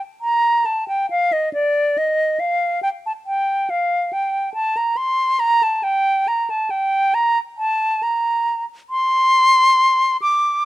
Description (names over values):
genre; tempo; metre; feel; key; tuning
classical, baroque-style fantasia for unaccompanied flute; 69 BPM; 4/4; rubato; Bb major; A4 = 438 Hz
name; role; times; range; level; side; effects
bright concert flute; solo; 0.2-10.7 s; D5 to D6; -16 LUFS; equal; none
room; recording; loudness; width
light reverb; close, detailed microphones; -16 LUFS; side -16 dB against mid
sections
0.0-10.7 A section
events
none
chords
none